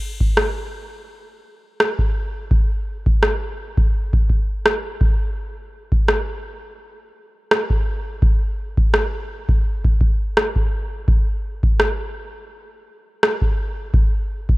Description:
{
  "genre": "R&B",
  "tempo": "84 BPM",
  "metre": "4/4",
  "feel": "swing 54% on 16ths",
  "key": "none",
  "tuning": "none",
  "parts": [
    { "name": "booming analog drum machine", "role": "drums", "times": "0.2-14.6 s", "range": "kick drum, rim click", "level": "-18 LUFS", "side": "equal", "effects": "none" }
  ],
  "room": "little or no reverb",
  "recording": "rough home demo mix",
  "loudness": "-17 LUFS",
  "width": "side -20 dB against mid",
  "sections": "0.0-14.6 A section",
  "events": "none",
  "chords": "none"
}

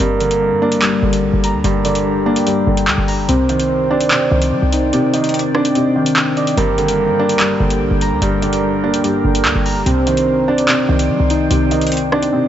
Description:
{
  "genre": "hip hop, drill",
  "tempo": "146 BPM",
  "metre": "4/4",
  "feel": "half-time",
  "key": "G minor",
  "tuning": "A4 = 440 Hz",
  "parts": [
    { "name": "soft octave-layered synth lead", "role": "second line", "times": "0.0-11.9 s", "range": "Bb4 to Eb5", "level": "-21 LUFS", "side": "right 3 dB", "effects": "chorus, tape echo" },
    { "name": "felt-muted upright piano", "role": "accompaniment", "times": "0.0-12.5 s", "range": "G2 to D4", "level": "-20 LUFS", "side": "right 3 dB", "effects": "low-pass filter" },
    { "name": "deep dark ambient pad", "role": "sustained chords", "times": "1.1-12.5 s", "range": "Eb3 to G5", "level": "-23 LUFS", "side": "right 1 dB", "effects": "chorus, built-in reverb" },
    { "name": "muted felt-like synth keys", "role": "arpeggios", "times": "0.0-12.5 s", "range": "G3 to Bb5", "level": "-18 LUFS", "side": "left 4 dB", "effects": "chorus, low-pass filter, tape echo" },
    { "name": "short 808-style bass", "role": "bass", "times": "0.0-12.3 s", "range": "F#1 to G3", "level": "-20 LUFS", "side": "equal", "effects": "none" },
    { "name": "drill drum kit", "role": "drums", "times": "0.0-12.3 s", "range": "handclaps, hi-hat, rim click", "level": "-20 LUFS", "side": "equal", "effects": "overdrive" }
  ],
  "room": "light reverb, digital ambience",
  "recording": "nothing above 7.8 kHz",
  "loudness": "-13 LUFS",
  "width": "side -10 dB against mid",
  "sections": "0.0-12.5 A section",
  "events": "kick muted 4.9-6.6; drums muted 12.3",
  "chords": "0.0 Gm; 3.3 Cmadd9; 6.6 Gm; 9.9 Cmadd9"
}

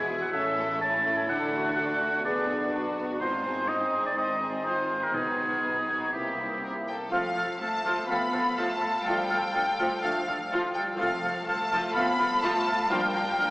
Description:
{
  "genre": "cinematic",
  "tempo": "124 BPM",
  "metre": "4/4",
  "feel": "straight",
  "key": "unclear",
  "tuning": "A4 = 444 Hz",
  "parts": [
    { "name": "warm symphonic violin section", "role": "melody", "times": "0.0-13.5 s", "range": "E4 to B5", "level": "-31 LUFS", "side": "left 1 dB", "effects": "none" },
    { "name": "clear oboe", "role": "second line", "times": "0.0-13.5 s", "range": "G4 to A5", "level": "-30 LUFS", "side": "equal", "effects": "none" },
    { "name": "warm symphonic violin section", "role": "second line", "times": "0.0-13.5 s", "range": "A3 to F5", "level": "-37 LUFS", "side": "equal", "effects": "none" },
    { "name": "warm symphonic viola section", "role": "accompaniment", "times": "0.0-13.5 s", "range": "F3 to A4", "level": "-35 LUFS", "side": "equal", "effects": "none" },
    { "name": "mellow French horn section", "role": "sustained chords", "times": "0.0-13.1 s", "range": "G#3 to F#4", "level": "-35 LUFS", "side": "equal", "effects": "none" },
    { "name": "clear studio double bass section", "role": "bass", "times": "0.0-13.5 s", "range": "E1 to F2", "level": "-46 LUFS", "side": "equal", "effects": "none" },
    { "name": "dark symphonic cello section", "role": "bass", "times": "0.0-13.5 s", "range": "E2 to B3", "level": "-38 LUFS", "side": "right 1 dB", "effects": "none" },
    { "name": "timpani", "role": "percussion", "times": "0.0-0.1, 5.1-5.8 s", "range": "B2", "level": "-52 LUFS", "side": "equal", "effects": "none" },
    { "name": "bright flute section", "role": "second line", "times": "7.1-13.4 s", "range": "F6", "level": "-33 LUFS", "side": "equal", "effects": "none" },
    { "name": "bright trombone section", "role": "sustained chords", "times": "7.1-13.1 s", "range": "F3 to Bb3", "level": "-39 LUFS", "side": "equal", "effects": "none" },
    { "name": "dark trumpet section", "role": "stabs", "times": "7.1-13.1 s", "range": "F5", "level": "-34 LUFS", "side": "equal", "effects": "none" }
  ],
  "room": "wet church reverb, RT60 3.4 s",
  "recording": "recorded in a church or concert hall, small speaker sound",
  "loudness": "-25 LUFS",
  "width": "side -21 dB against mid",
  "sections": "0.0-7.1 A section; 7.1-13.5 B section",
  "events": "none",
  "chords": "0.3 A; 1.3 D; 2.2 Bm; 3.2 G#; 5.1 B; 6.1 C7; 7.1 F; 9.1 Dm; 11.0 F/C; 12.9 Bb/D"
}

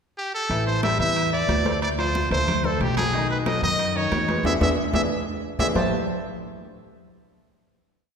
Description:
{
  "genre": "latin, salsa",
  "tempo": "183 BPM",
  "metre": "4/4",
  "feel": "straight",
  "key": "unclear",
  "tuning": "A4 = 439 Hz",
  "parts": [
    { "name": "brilliant trumpet", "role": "melody", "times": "0.2-5.9 s", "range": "G4 to A5", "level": "-25 LUFS", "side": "right 1 dB", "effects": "none" },
    { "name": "clear concert grand piano", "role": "accompaniment", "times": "0.5-5.9 s", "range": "D#3 to F5", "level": "-28 LUFS", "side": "left 2 dB", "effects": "none" },
    { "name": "upright bass", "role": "bass", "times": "0.5-5.9 s", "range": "A1 to F#2", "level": "-27 LUFS", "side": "equal", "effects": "none" },
    { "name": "congas", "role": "percussion", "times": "0.5-5.8 s", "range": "none", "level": "-29 LUFS", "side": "equal", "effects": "none" },
    { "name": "timbales", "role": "percussion", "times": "0.5-5.8 s", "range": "none", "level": "-31 LUFS", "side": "right 3 dB", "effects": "none" }
  ],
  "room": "wet concert hall reverb, RT60 2.1 s",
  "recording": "recorded in a church or concert hall",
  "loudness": "-20 LUFS",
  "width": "side -6 dB against mid",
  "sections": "0.0-0.5 pickup bar; 0.5-5.8 verse; 5.8-7.1 final chord",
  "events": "band accent 4.5-5.8",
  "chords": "0.0 N.C.; 0.5 Am7; 1.8 Dm7; 3.1 B69; 4.5 E7; 5.8 Am9"
}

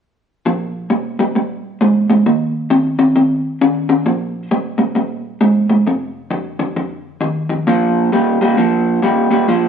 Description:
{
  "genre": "blues",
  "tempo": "133 BPM",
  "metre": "4/4",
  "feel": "swing 63% on 8ths",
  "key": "unclear",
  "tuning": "A4 = 440 Hz",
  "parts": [
    { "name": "electric guitar through a small old amp", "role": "solo", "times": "0.5-9.7 s", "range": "F2 to Db4", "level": "-14 LUFS", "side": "equal", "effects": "none" }
  ],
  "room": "wet stone room reverb, RT60 1.1 s",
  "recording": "band playing live in one room",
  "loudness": "-14 LUFS",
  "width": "side -7 dB against mid",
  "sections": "0.5-7.7 A section; 7.7-9.7 B section",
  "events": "none",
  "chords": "0.5 Bb5; 2.3 Eb5; 4.1 Bb5; 5.9 F5; 7.7 Bb5"
}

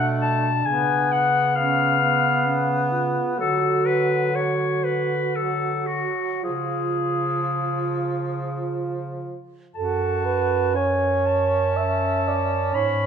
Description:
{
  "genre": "classical, lyrical piece for single-reed quartet",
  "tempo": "51-67 BPM",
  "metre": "3/4",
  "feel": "rubato",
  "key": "F# minor",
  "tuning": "A4 = 440 Hz",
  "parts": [
    { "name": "bright clarinet", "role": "melody", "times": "0.0-13.1 s", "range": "F#4 to B5", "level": "-24 LUFS", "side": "left 6 dB", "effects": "none" },
    { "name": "mellow alto saxophone", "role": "second line", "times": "0.0-13.1 s", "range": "B3 to E5", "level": "-26 LUFS", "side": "right 7 dB", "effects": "none" },
    { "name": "warm tenor saxophone", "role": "accompaniment", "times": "0.0-13.1 s", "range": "E#3 to F#4", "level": "-26 LUFS", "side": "left 1 dB", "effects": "none" },
    { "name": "mellow bass clarinet", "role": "bass", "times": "0.0-13.1 s", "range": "F#2 to D3", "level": "-28 LUFS", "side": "right 2 dB", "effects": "none" }
  ],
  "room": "wet recital hall reverb, RT60 1.4 s",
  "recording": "minimal, uncompressed stereo recording",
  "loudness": "-20 LUFS",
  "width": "side -7 dB against mid",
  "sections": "0.0-9.8 A section; 9.8-13.1 A section",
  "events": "none",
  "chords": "0.0 Bm7; 0.7 C#7; 3.4 D; 6.4 C#; 9.8 F#m"
}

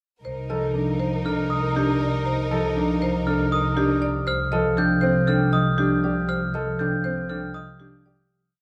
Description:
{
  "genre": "classical, minimalist pattern music",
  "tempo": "119 BPM",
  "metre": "4/4",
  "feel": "straight",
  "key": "C dorian",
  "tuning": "A4 = 440 Hz",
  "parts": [
    { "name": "marimba with medium hard mallets", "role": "melody", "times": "0.2-8.4 s", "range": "G4 to Eb5", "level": "-33 LUFS", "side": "equal", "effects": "none" },
    { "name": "warm symphonic string section", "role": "sustained chords", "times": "0.2-4.0 s", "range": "Eb4 to Bb4", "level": "-32 LUFS", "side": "equal", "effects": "none" },
    { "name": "warm symphonic double bass section", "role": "bass", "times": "0.2-8.2 s", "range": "C2", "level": "-30 LUFS", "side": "equal", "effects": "none" },
    { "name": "concert harp", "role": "accompaniment", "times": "0.5-8.3 s", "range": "C3 to G3", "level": "-29 LUFS", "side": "equal", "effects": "none" },
    { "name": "clear baby grand piano", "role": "arpeggios", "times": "0.5-8.4 s", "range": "C4 to A4", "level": "-29 LUFS", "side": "equal", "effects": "none" },
    { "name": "glockenspiel with soft plastic mallets", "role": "arpeggios", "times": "1.3-7.9 s", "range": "Eb6 to G6", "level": "-30 LUFS", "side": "equal", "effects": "none" }
  ],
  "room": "moderate recital hall reverb, RT60 1.5 s",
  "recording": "none",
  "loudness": "-23 LUFS",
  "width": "mono",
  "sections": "0.2-8.3 A section",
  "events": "fade-out 6.3-8.3",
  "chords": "0.2 Cm11"
}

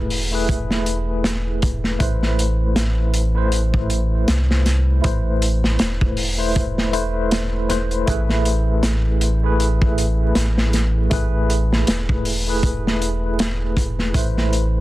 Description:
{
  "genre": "trip hop",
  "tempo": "79 BPM",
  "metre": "4/4",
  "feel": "swing 58% on 16ths",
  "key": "A harmonic minor",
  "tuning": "A4 = 440 Hz",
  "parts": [
    { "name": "bright tine electric piano", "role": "accompaniment", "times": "0.0-14.8 s", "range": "A3 to C5", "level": "-24 LUFS", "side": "equal", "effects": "medium stereo tremolo, tape echo" },
    { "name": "soft dub sub bass", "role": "bass", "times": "0.0-14.8 s", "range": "E1 to C2", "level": "-20 LUFS", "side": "equal", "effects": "none" },
    { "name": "crunchy breakbeat drum kit", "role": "drums", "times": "0.1-14.7 s", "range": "hi-hat, kick drum, snare drum", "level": "-21 LUFS", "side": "equal", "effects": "none" }
  ],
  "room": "little or no reverb",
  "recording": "dense, heavily limited modern master, vinyl crackle",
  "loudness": "-17 LUFS",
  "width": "side -17 dB against mid",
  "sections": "0.0-14.8 A section",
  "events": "none",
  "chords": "0.0 E; 2.0 Amadd9; 8.1 E/A; 14.2 Amadd9"
}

